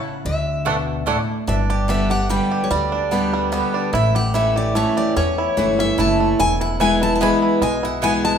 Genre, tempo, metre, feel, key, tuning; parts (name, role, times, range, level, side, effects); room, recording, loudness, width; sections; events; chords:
bluegrass; 146 BPM; 3/4; straight; A4 = 440 Hz
picked steel-string acoustic guitar; melody; 0.0-8.4 s; C#5 to B5; -23 LUFS; left 2 dB
picked steel-string acoustic guitar; accompaniment; 0.0-8.4 s; E2 to G4; -21 LUFS; left 1 dB
upright bass; bass; 0.3-8.4 s; E1 to E2; -24 LUFS; equal
bluegrass banjo; arpeggios; 0.7-8.4 s; E3 to G4; -23 LUFS; right 5 dB
mandolin; stabs; 0.7-1.2, 6.8-8.1 s; A3 to G#5; -26 LUFS; right 3 dB
wet large studio reverb, RT60 1.3 s; band playing live in one room; -16 LUFS; side -8 dB against mid
0.0-1.5 A section; 1.5-8.4 A section
0.2 Dadd9; 1.5 G; 3.9 A; 6.4 E